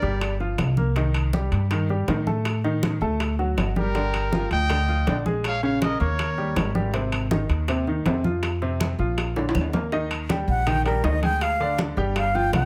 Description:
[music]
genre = latin, salsa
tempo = 161 BPM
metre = 4/4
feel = straight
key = Eb major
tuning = A4 = 439 Hz
[part]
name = bright trumpet section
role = melody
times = 0.0-0.4, 3.8-6.7 s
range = G4 to G5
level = -30 LUFS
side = equal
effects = none
[part]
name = bright baby grand piano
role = accompaniment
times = 0.0-12.7 s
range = C3 to Ab5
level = -29 LUFS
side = equal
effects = none
[part]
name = upright bass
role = bass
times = 0.0-12.7 s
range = G1 to A2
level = -28 LUFS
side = equal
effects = none
[part]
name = bongos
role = percussion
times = 0.0-12.7 s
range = none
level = -38 LUFS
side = equal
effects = none
[part]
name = claves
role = percussion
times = 0.2-12.7 s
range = none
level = -41 LUFS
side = equal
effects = none
[part]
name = congas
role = percussion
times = 0.2-12.7 s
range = none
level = -31 LUFS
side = equal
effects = none
[part]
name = timbales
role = percussion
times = 0.2-12.7 s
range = none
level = -35 LUFS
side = equal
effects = none
[part]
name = breathy bright concert flute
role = melody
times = 10.5-12.7 s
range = Bb4 to G5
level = -26 LUFS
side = equal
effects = none
[sound]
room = light reverb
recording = close, detailed microphones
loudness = -24 LUFS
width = mono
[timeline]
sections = 0.0-9.9 A section; 9.9-12.7 B section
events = drum fill 9.2-9.9; flute solo 9.9-12.7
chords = 0.2 Gm7; 1.0 Cm; 2.5 D5; 3.2 D; 4.0 Gm7; 5.4 Bbm7; 6.2 Eb7; 6.9 Ab; 8.4 F5; 9.2 Bb; 9.9 Eb; 11.4 Ddim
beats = 0.21 0.59 | 0.96 1.34 1.71 2.08 | 2.46 2.83 3.21 3.58 | 3.95 4.33 4.70 5.07 | 5.45 5.82 6.19 6.57 | 6.94 7.31 7.69 8.06 | 8.43 8.80 9.18 9.55 | 9.92 10.30 10.67 11.04 | 11.42 11.79 12.16 12.53

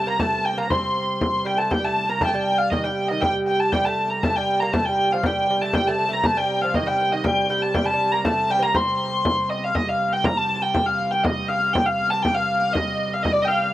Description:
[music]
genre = medieval dance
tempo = 120 BPM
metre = 2/4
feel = straight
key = C dorian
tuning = A4 = 440 Hz
[part]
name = dark hurdy-gurdy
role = melody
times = 0.0-13.7 s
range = D5 to C6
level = -21 LUFS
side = equal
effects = none
[part]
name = lute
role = second line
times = 0.0-9.5 s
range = Eb3 to C4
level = -27 LUFS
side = right 2 dB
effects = none
[part]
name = pipe organ, foundations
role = drone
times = 0.0-13.7 s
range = C3 to G3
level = -31 LUFS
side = right 2 dB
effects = none
[part]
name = frame drum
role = percussion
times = 0.2-13.5 s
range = none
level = -25 LUFS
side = left 1 dB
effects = none
[sound]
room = little or no reverb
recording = recorded outdoors, with no room sound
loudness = -19 LUFS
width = side -14 dB against mid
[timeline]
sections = 0.0-1.7 A section; 1.7-9.8 A section; 9.8-13.7 B section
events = none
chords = none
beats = 0.20 | 0.70 1.21 | 1.71 2.22 | 2.72 3.22 | 3.73 4.23 | 4.73 5.24 | 5.74 6.24 | 6.74 7.25 | 7.75 8.25 | 8.75 9.25 | 9.75 10.26 | 10.76 11.26 | 11.76 12.26 | 12.76 13.26

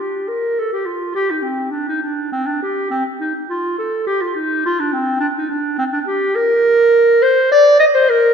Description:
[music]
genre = classical, baroque-style fantasia for unaccompanied clarinet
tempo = 104 BPM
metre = 3/4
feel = rubato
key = G minor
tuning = A4 = 441 Hz
[part]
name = mellow clarinet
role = solo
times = 0.0-8.3 s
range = C4 to Eb5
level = -14 LUFS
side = equal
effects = none
[sound]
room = wet concert hall reverb, RT60 1.9 s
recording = recorded in a church or concert hall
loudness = -14 LUFS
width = side -6 dB against mid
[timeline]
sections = 0.0-8.3 A section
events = none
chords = none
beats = 0.00 0.58 | 1.17 1.75 2.33 | 2.91 3.48 4.05 | 4.63 5.20 5.77 | 6.33 6.91 7.49 | 8.07

